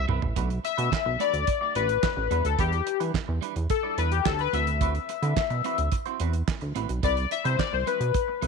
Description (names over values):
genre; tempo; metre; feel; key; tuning
early-eighties boogie funk; 108 BPM; 4/4; straight; unclear; A4 = 439 Hz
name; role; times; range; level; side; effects
chorused synth bass; bass; 0.0-8.5 s; A1 to E3; -27 LUFS; right 1 dB; none
clean electric guitar; riff; 0.1-8.5 s; G3 to D5; -35 LUFS; right 16 dB; wide subtle chorus
damped 70s drum kit; drums; 0.1-8.5 s; handclaps, hi-hat, kick drum, snare drum, toms; -30 LUFS; right 4 dB; none
chorused polysynth; accompaniment; 0.6-8.5 s; G4 to E5; -26 LUFS; left 13 dB; none
room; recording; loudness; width
light reverb, small room ambience; 1960s-style stereo with parts hard left and right; -24 LUFS; side -5 dB against mid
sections
0.4-8.5 A section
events
drum fill 0.0-0.4; analog polysynth solo 0.4-8.5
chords
0.4 Bm7; 2.3 Em7; 4.5 D13; 7.0 Cmaj7